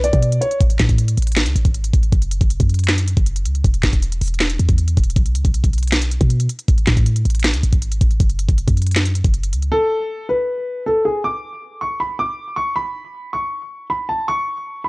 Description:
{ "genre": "hip hop, trap", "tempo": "158 BPM", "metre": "4/4", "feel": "half-time", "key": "unclear", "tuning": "A4 = 440 Hz", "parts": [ { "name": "dark concert grand piano", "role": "melody", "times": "0.0-0.6, 9.7-14.9 s", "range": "G#4 to D6", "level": "-19 LUFS", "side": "equal", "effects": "low-pass filter" }, { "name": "warm 808-style bass", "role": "bass", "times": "0.0-9.7 s", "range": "E1 to B2", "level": "-17 LUFS", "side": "equal", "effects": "none" }, { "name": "trap drum kit", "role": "drums", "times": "0.0-9.7 s", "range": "handclaps, hi-hat, kick drum, snare drum", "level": "-17 LUFS", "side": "equal", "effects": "none" } ], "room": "little or no reverb", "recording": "dry, gritty hardware recording, transformer saturation, cassette tape", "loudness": "-16 LUFS", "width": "side -25 dB against mid", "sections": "0.0-11.2 A section; 11.2-14.9 B section", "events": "none", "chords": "0.0 Bm; 0.6 N.C.; 2.1 F#5; 3.6 N.C.; 8.2 F#5; 9.7 N.C.", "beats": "0.23 | 0.61 0.99 1.36 1.75 | 2.12 2.50 2.88 3.26 | 3.64 4.02 4.40 4.78 | 5.16 5.54 5.92 6.30 | 6.68 7.06 7.44 7.82 | 8.20 8.58 8.96 9.34 | 9.72 10.10 10.48 10.86 | 11.24 11.62 12.00 12.38 | 12.76 13.14 13.52 13.90 | 14.28 14.66" }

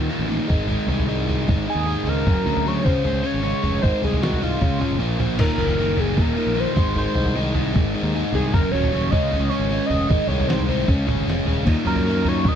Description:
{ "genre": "indie rock", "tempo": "153 BPM", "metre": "4/4", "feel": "straight", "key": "unclear", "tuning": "A4 = 439 Hz", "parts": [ { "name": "biting overdriven guitar", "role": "riff", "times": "0.0-12.6 s", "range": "Eb2 to Db4", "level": "-23 LUFS", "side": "equal", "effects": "none" }, { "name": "growling fingered electric bass", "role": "bass", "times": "0.0-12.5 s", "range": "Eb1 to Gb2", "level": "-25 LUFS", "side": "equal", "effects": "overdrive" }, { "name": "lo-fi sampler-style drum kit", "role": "drums", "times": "0.5-12.5 s", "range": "crash cymbal, kick drum, snare drum, toms", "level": "-23 LUFS", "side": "equal", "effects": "none" }, { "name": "overdriven synth lead", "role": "melody", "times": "1.7-12.6 s", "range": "F4 to Eb5", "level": "-25 LUFS", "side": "equal", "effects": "distortion, chorus, phaser, slapback echo" } ], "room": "little or no reverb", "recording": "dry, close 1970s-style studio recording", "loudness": "-18 LUFS", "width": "side -8 dB against mid", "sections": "0.0-5.4 A section; 5.4-12.6 A section", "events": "drum fill 11.3-11.7", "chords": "0.0 Eb5; 0.5 Ab; 2.3 Gb; 2.9 Db; 3.8 Ab; 4.6 Db; 5.0 Bb5; 5.4 Ebm; 6.8 Ab; 8.5 Gb5; 9.1 Db; 10.1 Ab; 10.9 Db; 11.7 Ebm", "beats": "0.31 | 0.70 1.09 1.48 1.87 | 2.27 2.66 3.05 3.44 | 3.83 4.23 4.62 5.01 | 5.40 5.80 6.19 6.58 | 6.97 7.36 7.75 8.15 | 8.54 8.93 9.32 9.71 | 10.11 10.50 10.89 11.28 | 11.68 12.07 12.46" }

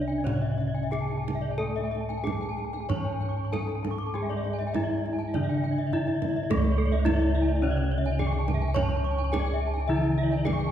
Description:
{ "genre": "Balinese gamelan", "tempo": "90-106 BPM", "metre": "4/4", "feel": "straight", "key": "C# pelog", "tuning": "A4 = 440 Hz", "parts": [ { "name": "gamelan-type bronze metallophone", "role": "melody", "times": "0.0-10.7 s", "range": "A3-20c to C#5", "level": "-31 LUFS", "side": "equal", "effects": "none" }, { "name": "gamelan-type bronze metallophone", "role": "accompaniment", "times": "0.0-10.7 s", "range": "C#3 to C#4", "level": "-33 LUFS", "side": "equal", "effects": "none" }, { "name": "gamelan-type bronze metallophone", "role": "arpeggios", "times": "0.0-10.6 s", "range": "A4-20c to C#6", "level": "-37 LUFS", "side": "right 5 dB", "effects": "none" }, { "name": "gamelan-type bossed gongs", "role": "bass", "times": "0.0-10.7 s", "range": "C#2 to C#5", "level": "-29 LUFS", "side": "equal", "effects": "none" }, { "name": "gamelan-type bronze metallophone", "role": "arpeggios", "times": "0.1-10.7 s", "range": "A4-20c to D6+20c", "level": "-34 LUFS", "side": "left 5 dB", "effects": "none" }, { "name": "kendang", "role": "percussion", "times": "0.1-10.7 s", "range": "none", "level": "-35 LUFS", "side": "right 3 dB", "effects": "none" } ], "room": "wet concert hall reverb, RT60 1.9 s", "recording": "heard from further back in the room", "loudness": "-25 LUFS", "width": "side -10 dB against mid", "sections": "0.0-6.5 A section; 6.5-10.7 B section", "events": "none", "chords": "none", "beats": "0.26 0.93 | 1.60 2.25 2.90 3.53 | 4.15 4.75 5.35 5.93 | 6.50 7.07 7.63 8.20 | 8.76 9.32 9.89 10.46" }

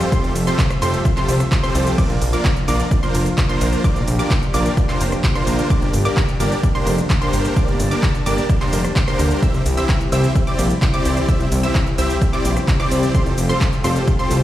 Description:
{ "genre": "EDM, festival progressive house", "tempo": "129 BPM", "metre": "4/4", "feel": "straight", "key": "F major", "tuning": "A4 = 442 Hz", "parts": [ { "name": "lush unison pad", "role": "sustained chords", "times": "0.0-14.4 s", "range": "Bb2 to A5", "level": "-26 LUFS", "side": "left 1 dB", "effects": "chorus, sidechain pumping" }, { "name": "wide unison pluck", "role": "arpeggios", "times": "0.0-14.4 s", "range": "C6 to E6", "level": "-29 LUFS", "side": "right 1 dB", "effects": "sidechain pumping, dub echo" }, { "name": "supersaw chords", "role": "riff", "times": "0.0-14.4 s", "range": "Bb3 to E5", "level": "-22 LUFS", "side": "equal", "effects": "sidechain pumping, dub echo" }, { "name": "fat analog bass", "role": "bass", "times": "0.0-14.4 s", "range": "F1 to D2", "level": "-19 LUFS", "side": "equal", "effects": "sidechain pumping" }, { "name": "big-room dance drum kit", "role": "drums", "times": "0.0-14.4 s", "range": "crash cymbal, handclaps, hi-hat, ride cymbal, rim click, shaker", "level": "-28 LUFS", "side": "equal", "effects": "overdrive" }, { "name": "electronic kick drum", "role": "drums", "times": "0.1-14.2 s", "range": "none", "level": "-19 LUFS", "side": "equal", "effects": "overdrive" } ], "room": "little or no reverb", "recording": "played on a big sound system in a bare room, stone room reverb", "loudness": "-15 LUFS", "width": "side -13 dB against mid", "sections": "0.0-14.4 A section", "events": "none", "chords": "0.0 Fadd9; 2.0 Bb; 5.7 Gm; 9.4 C; 13.1 Fadd9", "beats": "| 0.12 0.59 1.05 1.52 | 1.98 2.45 2.91 3.38 | 3.84 4.31 4.77 5.24 | 5.70 6.17 6.63 7.10 | 7.56 8.03 8.49 8.96 | 9.43 9.89 10.36 10.82 | 11.29 11.75 12.21 12.68 | 13.14 13.61 14.08" }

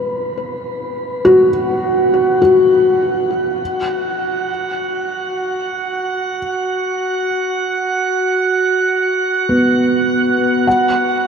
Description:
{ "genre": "ambient", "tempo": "51 BPM", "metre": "3/4", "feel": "straight", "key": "unclear", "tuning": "A4 = 440 Hz", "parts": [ { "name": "felt-muted upright piano", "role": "arpeggios", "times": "0.0-11.3 s", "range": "B3 to F#5", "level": "-15 LUFS", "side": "left 1 dB", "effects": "ping-pong delay" }, { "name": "drifting glass-harmonics texture", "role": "texture", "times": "3.9-11.3 s", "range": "F#4 to F#5", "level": "-17 LUFS", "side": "right 3 dB", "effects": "chorus, built-in reverb" } ], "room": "wet shimmer reverb, RT60 8.3 s", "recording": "dark, warm production", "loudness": "-14 LUFS", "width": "side -6 dB against mid", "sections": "0.0-3.6 A section; 3.6-11.3 B section", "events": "none", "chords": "0.0 B5; 10.7 N.C.", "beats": "| 0.07 1.25 2.43 | 3.60 4.78 5.96 | 7.13 8.31 9.49 | 10.66" }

